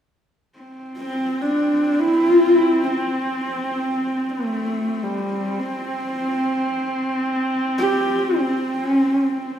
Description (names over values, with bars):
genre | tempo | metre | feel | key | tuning
mongolian traditional | free time | none | none | C gong mode | A4 = 441 Hz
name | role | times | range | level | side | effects
warm horsehead fiddle | drone | 0.6-9.6 s | C4 | -25 LUFS | right 1 dB | none
warm horsehead fiddle | melody | 1.0-9.6 s | G3 to G4 | -19 LUFS | equal | none
room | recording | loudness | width
wet large studio reverb, RT60 1.4 s | band playing live in one room | -18 LUFS | side -9 dB against mid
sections
0.6-9.6 A section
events
none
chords
none